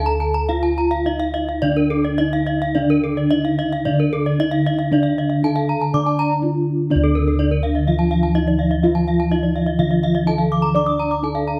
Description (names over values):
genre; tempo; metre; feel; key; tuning
Balinese gamelan; 106-125 BPM; 4/4; straight; D pelog; A4 = 440 Hz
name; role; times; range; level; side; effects
gamelan-type bronze metallophone; melody; 0.0-11.6 s; D4 to D5; -25 LUFS; equal; none
gamelan-type bronze metallophone; arpeggios; 0.0-11.6 s; A4-30c to D6; -28 LUFS; equal; none
gamelan-type bossed gongs; bass; 0.0-11.6 s; D2 to D5; -23 LUFS; equal; none
gamelan-type bronze metallophone; arpeggios; 0.1-11.5 s; A4-30c to Eb6+20c; -29 LUFS; equal; none
gamelan-type bronze metallophone; accompaniment; 2.8-11.6 s; D3 to D4; -24 LUFS; equal; none
room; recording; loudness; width
moderate recital hall reverb, RT60 1.3 s; none; -19 LUFS; mono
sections
0.0-6.9 A section; 6.9-11.6 B section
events
none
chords
none